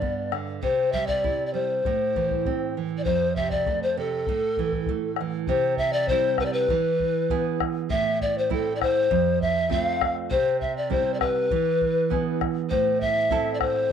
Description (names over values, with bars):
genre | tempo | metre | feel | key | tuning
andean folk, Andean ensemble | 99 BPM | 2/4 | straight | A minor | A4 = 439 Hz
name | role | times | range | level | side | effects
breathy mellow polished pan flute | melody | 0.0-13.9 s | A4 to F5 | -23 LUFS | left 2 dB | none
nylon-string guitar | accompaniment | 0.0-13.9 s | F2 to A4 | -28 LUFS | right 9 dB | none
bombo | percussion | 0.0-13.7 s | none | -30 LUFS | left 4 dB | none
room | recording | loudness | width
wet spring reverb, RT60 1.2 s, studio reverb | 1960s-style stereo | -22 LUFS | side -8 dB against mid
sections
0.0-5.5 A section; 5.5-13.9 B section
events
none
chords
0.0 G; 0.6 C; 1.8 Am; 3.1 F; 4.3 A5; 5.5 C; 6.7 E; 7.9 Am; 9.1 F; 10.3 C; 11.5 E; 12.7 Am